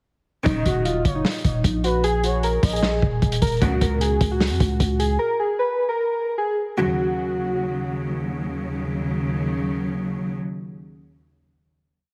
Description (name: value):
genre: hip hop, trap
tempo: 152 BPM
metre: 4/4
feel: half-time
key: Eb minor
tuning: A4 = 440 Hz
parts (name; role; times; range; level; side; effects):
- warbly lo-fi synth keys; melody; 0.5-7.9 s; Eb4 to Cb5; -26 LUFS; equal; chorus, digital delay
- warm studio string section; stabs; 0.5-0.8, 3.6-4.0, 6.8-10.3 s; Eb2 to Gb3; -28 LUFS; equal; none
- growling 808-style bass; bass; 0.5-5.2 s; Eb1 to F2; -26 LUFS; equal; none
- vintage drum kit; drums; 0.5-5.1 s; hi-hat, kick drum, rim click, snare drum; -25 LUFS; equal; none
- gliding portamento lead; second line; 0.7-3.2 s; Cb5 to Eb5; -32 LUFS; equal; chorus, digital delay
room: light reverb, studio ambience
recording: heavily compressed radio sound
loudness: -23 LUFS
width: mono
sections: 0.5-6.8 hook; 6.8-9.9 final chord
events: none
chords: 0.5 Ebm7; 3.6 Dbsus4; 6.8 Ebm7